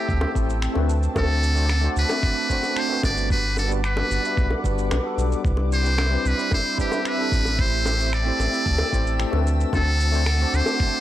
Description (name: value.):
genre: sunset chillout.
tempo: 112 BPM.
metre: 4/4.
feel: straight.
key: unclear.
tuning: A4 = 441 Hz.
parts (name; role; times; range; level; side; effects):
trumpet with metal mute; melody; 0.0-11.0 s; G4 to D5; -25 LUFS; equal; analog delay.
tine electric piano; accompaniment; 0.0-11.0 s; G3 to E5; -28 LUFS; moving between left 6 dB and right 7 dB; slow stereo tremolo, auto-pan, tape echo.
ethereal airy pad; sustained chords; 0.0-11.0 s; C4 to E6; -32 LUFS; equal; ensemble chorus, built-in reverb.
round analog bass; bass; 0.1-10.6 s; G1 to D2; -22 LUFS; equal; none.
electronic kick drum; drums; 0.1-10.9 s; none; -24 LUFS; equal; overdrive, small room ambience.
electronic shaker and finger snaps; drums; 0.1-10.9 s; none; -35 LUFS; right 1 dB; overdrive, small room ambience.
bongos; percussion; 0.2-10.8 s; none; -30 LUFS; equal; none.
drifting glass-harmonics texture; texture; 6.3-11.0 s; E5 to E6; -37 LUFS; left 1 dB; chorus, built-in reverb.
room: little or no reverb.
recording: dry, gritty hardware recording, cassette tape.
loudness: -19 LUFS.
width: side -13 dB against mid.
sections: 0.0-11.0 A section.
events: none.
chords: 0.0 Am7; 0.9 D7; 3.3 Gmaj7; 5.4 Cmaj9; 7.6 Am7; 9.5 D7.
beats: 0.09 0.62 | 1.16 1.70 2.23 2.77 | 3.30 3.84 4.38 4.91 | 5.45 5.98 6.52 7.05 | 7.59 8.12 8.66 9.20 | 9.73 10.27 10.80.